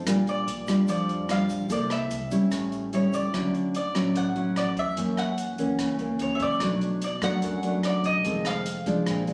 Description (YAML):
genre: bossa nova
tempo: 147 BPM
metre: 4/4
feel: straight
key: D major from 3.3 s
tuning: A4 = 440 Hz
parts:
  - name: nylon-string guitar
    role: accompaniment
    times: 0.0-9.3 s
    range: F2 to A4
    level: -28 LUFS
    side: equal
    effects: none
  - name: upright bass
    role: bass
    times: 0.0-9.3 s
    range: F1 to F#2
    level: -40 LUFS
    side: equal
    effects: none
  - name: open jazz drum kit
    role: drums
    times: 0.1-9.3 s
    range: hi-hat, kick drum, rim click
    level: -39 LUFS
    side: equal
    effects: none
  - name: egg shaker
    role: percussion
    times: 0.1-3.3 s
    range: none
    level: -52 LUFS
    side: equal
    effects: none
  - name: mandolin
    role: melody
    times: 0.3-9.2 s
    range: C#5 to F#5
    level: -33 LUFS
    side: equal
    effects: plate reverb
room: moderate small room reverb, RT60 0.5 s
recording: recorded on a phone in the room, studio reverb, compression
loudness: -26 LUFS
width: mono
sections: 0.0-3.3 A section; 3.3-9.3 B section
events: none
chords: 0.1 Bb6; 1.7 C6; 2.5 A7; 3.3 Dmaj9; 5.0 F#7; 6.6 Bm7; 8.2 Fm7